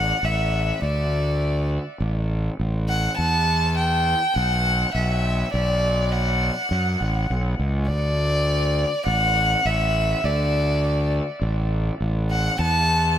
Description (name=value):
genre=post-rock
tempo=102 BPM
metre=4/4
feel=straight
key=D major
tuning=A4 = 437 Hz
part: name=rich violin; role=melody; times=0.0-13.2 s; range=D5 to A5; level=-23 LUFS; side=equal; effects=diffuse ambient delay
part: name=fuzz fingered electric bass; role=bass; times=0.0-13.2 s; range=A1 to F#2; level=-22 LUFS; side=equal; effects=overdrive
room=moderate lush hall reverb, RT60 2.5 s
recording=dreamy mix soaked in reverb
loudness=-20 LUFS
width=side -10 dB against mid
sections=0.0-13.2 A section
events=none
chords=0.0 D5; 3.2 Em; 5.5 Bm; 7.9 D5; 12.6 N.C.